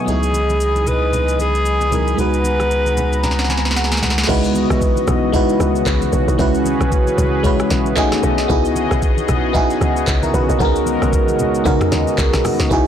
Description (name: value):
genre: amapiano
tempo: 114 BPM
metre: 4/4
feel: swing 58% on 16ths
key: C# dorian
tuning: A4 = 440 Hz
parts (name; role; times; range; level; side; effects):
- FM electric piano; accompaniment; 0.0-12.9 s; F#3 to B5; -19 LUFS; right 1 dB; chorus, phaser
- warm analog pad; sustained chords; 0.0-12.9 s; C#3 to D#6; -22 LUFS; left 2 dB; chorus, sidechain pumping
- breathy alto saxophone; melody; 0.1-3.7 s; G#4 to B4; -20 LUFS; left 1 dB; digital delay
- warm sub bass; bass; 0.1-4.2 s; C#2; -20 LUFS; equal; none
- afro-pop drum kit; drums; 0.1-12.9 s; crash cymbal, handclaps, hi-hat, kick drum, rim click, shaker, snare drum, toms; -20 LUFS; equal; none
- congas; percussion; 0.1-12.9 s; none; -29 LUFS; equal; none
- tight log drum bass; bass; 4.3-12.9 s; B1 to C#3; -20 LUFS; equal; none
room: light reverb, digital ambience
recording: blown-out, overdriven recording, overdrive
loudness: -14 LUFS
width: side -9 dB against mid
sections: 0.0-4.3 A section; 4.3-12.9 B section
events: FM electric piano fill 2.7-4.3; drum fill 3.2-4.3; drop 4.3-12.9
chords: 0.1 Emaj7/C#; 2.2 G#m9/C#; 4.3 C#m11; 6.4 F#9sus4; 8.0 B13; 8.5 Emaj7; 10.6 G#m9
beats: | 0.08 0.60 1.13 1.66 | 2.18 2.71 3.24 3.76 | 4.29 4.82 5.34 5.87 | 6.39 6.92 7.45 7.97 | 8.50 9.03 9.55 10.08 | 10.60 11.13 11.66 12.18 | 12.71